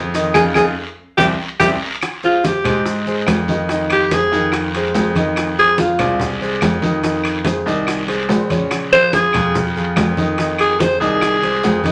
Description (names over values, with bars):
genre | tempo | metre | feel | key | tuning
Afro-Cuban jazz | 144 BPM | 4/4 | straight | F minor | A4 = 440 Hz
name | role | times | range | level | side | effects
warm grand piano | accompaniment | 0.0-11.9 s | Db3 to Eb5 | -24 LUFS | equal | none
bright concert grand piano | bass | 0.0-11.9 s | Bb1 to Ab2 | -25 LUFS | equal | none
bongos | percussion | 0.1-11.9 s | none | -29 LUFS | equal | none
guiro | percussion | 0.1-11.9 s | none | -34 LUFS | equal | none
maracas | percussion | 0.1-11.9 s | none | -40 LUFS | equal | none
timbales | percussion | 0.1-11.9 s | none | -26 LUFS | equal | none
breathy tenor saxophone | second line | 0.3-1.7 s | G4 to Ab4 | -17 LUFS | equal | none
claves | percussion | 0.3-11.4 s | none | -30 LUFS | equal | none
congas | percussion | 0.3-11.9 s | none | -25 LUFS | equal | none
growling alto saxophone | melody | 2.2-6.2, 8.9-11.9 s | F4 to C5 | -17 LUFS | equal | none
room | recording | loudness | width
moderate studio reverb, RT60 0.6 s | none | -17 LUFS | mono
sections
0.0-2.0 A section; 2.0-11.9 A section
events
tenor saxophone solo 0.0-2.0; band accent 0.4-2.0; drum fill 1.4-2.0; alto saxophone solo 2.0-11.9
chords
0.0 Fm7; 1.2 C; 2.0 Fm7; 8.7 Bbm7; 10.4 Fm7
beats
| 0.35 0.77 1.19 1.61 | 2.02 2.44 2.86 3.28 | 3.70 4.11 4.53 4.95 | 5.37 5.79 6.20 6.62 | 7.04 7.46 7.88 8.29 | 8.71 9.13 9.55 9.96 | 10.38 10.80 11.22 11.63